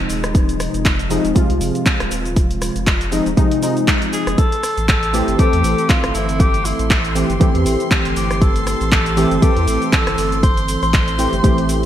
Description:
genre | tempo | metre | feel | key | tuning
deep house | 119 BPM | 4/4 | swing 56% on 16ths | A minor | A4 = 440 Hz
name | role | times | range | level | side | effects
warm analog keys | stabs | 0.0-11.9 s | C3 to A4 | -19 LUFS | equal | chorus
warm sub bass | bass | 0.0-11.9 s | Eb1 to E2 | -22 LUFS | equal | sidechain pumping
punchy analog drum machine | drums | 0.1-11.9 s | handclaps, hi-hat, rim click, shaker | -22 LUFS | equal | gated reverb
electronic kick drum | drums | 0.3-11.6 s | none | -16 LUFS | equal | none
warm tenor saxophone | melody | 4.1-11.8 s | E4 to C5 | -22 LUFS | left 1 dB | digital delay
string machine, violins | texture | 4.4-11.9 s | C6 | -31 LUFS | equal | ensemble chorus, sidechain pumping
room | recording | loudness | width
light reverb, digital ambience | bright 1980s-style digital production | -14 LUFS | side -11 dB against mid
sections
0.0-11.9 A section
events
none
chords
0.0 Fm7; 4.4 Am7

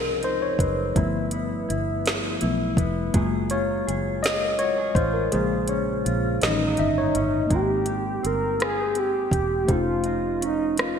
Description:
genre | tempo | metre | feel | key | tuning
slow six-eight R&B | 55 BPM (dotted quarters) | 6/8 | straight | Ab major | A4 = 437 Hz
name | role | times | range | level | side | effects
mellow electric guitar | second line | 0.0-11.0 s | G2 to Bb4 | -29 LUFS | right 3 dB | ping-pong delay
mellow tine electric piano | accompaniment | 0.0-11.0 s | Db3 to G5 | -26 LUFS | left 4 dB | medium stereo tremolo
fingered electric bass | bass | 0.0-11.0 s | Fb1 to C2 | -29 LUFS | right 1 dB | none
smooth R&B drum kit | drums | 0.2-11.0 s | hi-hat, kick drum, rim click, snare drum | -26 LUFS | right 1 dB | gated reverb
mellow horn-like synth lead | melody | 6.4-11.0 s | D#4 to Bb4 | -24 LUFS | right 1 dB | chorus
room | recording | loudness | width
moderate lush hall reverb, RT60 2.6 s | bright 1980s-style digital production | -21 LUFS | side -7 dB against mid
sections
0.0-7.5 A section; 7.5-11.0 B section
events
tine electric piano solo 0.0-7.5; kick muted 5.3-7.5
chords
0.0 Dbmaj9; 1.0 G13; 3.1 Gbmaj9; 5.3 Bbm7; 6.4 A7#11; 7.5 Abmaj9; 9.7 F7b13

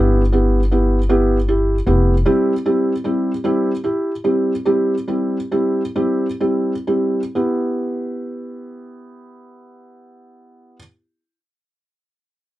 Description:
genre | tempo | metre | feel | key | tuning
pop | 40-52 BPM (dotted quarters) | 6/8 | straight | G major | A4 = 441 Hz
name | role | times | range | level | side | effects
felt-muted upright piano | accompaniment | 0.0-10.8 s | G3 to G4 | -17 LUFS | right 1 dB | none
upright bass | bass | 0.0-2.2 s | F1 to G1 | -17 LUFS | equal | none
room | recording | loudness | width
little or no reverb | none | -16 LUFS | side -15 dB against mid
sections
0.0-7.4 A section; 7.4-10.3 B section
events
slowing down 2.3-7.4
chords
0.0 Em; 2.3 C/G; 7.4 G6

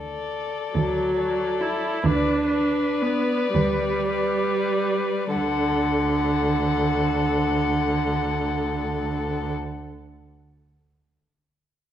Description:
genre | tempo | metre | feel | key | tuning
classical, slow romantic movement for string quartet | 30-48 BPM (dotted quarters) | 6/8 | rubato | D major | A4 = 440 Hz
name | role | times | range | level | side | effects
muted violin | melody | 0.0-9.5 s | D5 to F#5 | -30 LUFS | left 8 dB | none
muted violin | second line | 0.0-9.5 s | A4 to B4 | -29 LUFS | left 4 dB | none
muted cello | bass | 0.0-9.5 s | D2 | -27 LUFS | right 3 dB | none
muted viola | accompaniment | 0.7-9.5 s | D3 to E4 | -24 LUFS | right 2 dB | none
room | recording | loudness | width
wet recital hall reverb, RT60 1.6 s | none | -21 LUFS | side -10 dB against mid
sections
0.0-5.4 A section; 5.4-8.8 B section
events
slowing down 0.0-5.4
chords
0.0 D; 2.0 G/D; 5.4 D

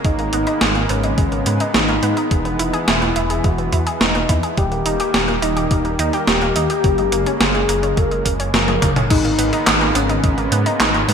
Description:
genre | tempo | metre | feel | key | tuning
synthwave | 106 BPM | 4/4 | straight | G# minor | A4 = 441 Hz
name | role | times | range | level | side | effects
soft octave-layered synth lead | melody | 0.0-11.1 s | C#4 to A#4 | -22 LUFS | left 2 dB | chorus, digital delay
lush unison pad | sustained chords | 0.0-11.1 s | C#3 to B3 | -25 LUFS | right 1 dB | chorus, sidechain pumping
analog pluck | arpeggios | 0.0-11.1 s | F#3 to G#4 | -25 LUFS | right 2 dB | chorus, ping-pong delay
dark detuned saw bass | bass | 0.0-11.1 s | D#1 to G#2 | -22 LUFS | equal | none
electronic kick drum | drums | 0.0-10.3 s | none | -18 LUFS | equal | none
gated 80s digital drum machine | drums | 0.0-11.1 s | crash cymbal, handclaps, hi-hat, snare drum, toms | -19 LUFS | equal | gated reverb, gated reverb snare
FM electric piano with soft pad layer | second line | 9.1-11.1 s | C#4 to D#4 | -28 LUFS | left 2 dB | none
room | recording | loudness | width
moderate plate reverb, RT60 2.6 s | bright 1980s-style digital production | -15 LUFS | side -7 dB against mid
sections
0.0-9.1 A section; 9.1-11.1 B section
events
drum fill 8.5-9.1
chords
0.0 G#madd9; 2.3 E; 4.6 D#; 6.8 F#add9; 9.1 G#madd9

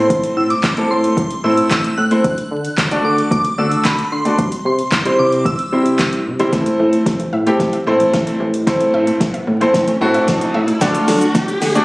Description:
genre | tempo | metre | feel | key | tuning
dance-pop | 112 BPM | 4/4 | straight | A dorian | A4 = 442 Hz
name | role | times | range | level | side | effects
shimmering bell with halo | melody | 0.0-6.0 s | B5 to F#6 | -21 LUFS | equal | ensemble chorus, analog delay
clear concert grand piano | accompaniment | 0.0-11.8 s | G3 to A5 | -16 LUFS | equal | sidechain pumping
chorused synth bass | bass | 0.0-11.8 s | A1 to D3 | -20 LUFS | equal | sidechain pumping
smooth R&B drum kit | drums | 0.1-11.8 s | handclaps, hi-hat, kick drum, shaker, snare drum | -20 LUFS | equal | none
analog pluck | arpeggios | 6.5-11.7 s | E3 to F#5 | -24 LUFS | right 1 dB | chorus, sidechain pumping, analog delay
riser | sound effects | 8.3-11.8 s | none | -26 LUFS | equal | none
room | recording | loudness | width
light reverb, digital ambience | recorded on a phone in the room, studio reverb, vinyl crackle, compression, high-pass filter | -13 LUFS | side -22 dB against mid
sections
0.0-6.5 A section; 6.5-11.8 B section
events
build-up 6.5-11.8; drum fill 6.5-11.8; filter sweep 6.5-11.8; riser 8.3-11.8; grand piano fill 9.7-10.8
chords
0.0 Am; 2.2 D; 4.4 C; 6.5 Am; 10.8 D

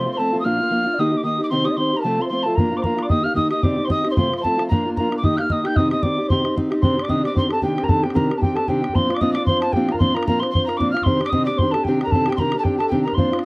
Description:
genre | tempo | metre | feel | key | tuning
celtic folk, Celtic reel | 226 BPM | 4/4 | swing 55% on 8ths | C dorian | A4 = 440 Hz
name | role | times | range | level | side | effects
mellow hollow tin whistle | melody | 0.0-13.4 s | G5 to G6 | -26 LUFS | equal | none
mellow baroque flute | second line | 0.0-13.4 s | G4 to G5 | -29 LUFS | equal | none
fingerpicked steel-string acoustic guitar | accompaniment | 0.0-13.4 s | F2 to G4 | -24 LUFS | equal | none
bodhran | percussion | 2.6-13.4 s | none | -24 LUFS | equal | none
room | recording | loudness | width
light reverb | none | -20 LUFS | mono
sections
0.0-6.8 A section; 6.8-13.4 B section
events
none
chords
0.5 Bb; 1.0 Eb; 1.5 Cm; 2.1 F; 2.6 Bb; 3.1 Eb; 3.6 Cm; 4.2 F; 4.7 Bb; 5.2 Eb; 5.8 Cm; 6.8 Cmadd9; 9.0 Bbadd9; 11.1 Cmadd9

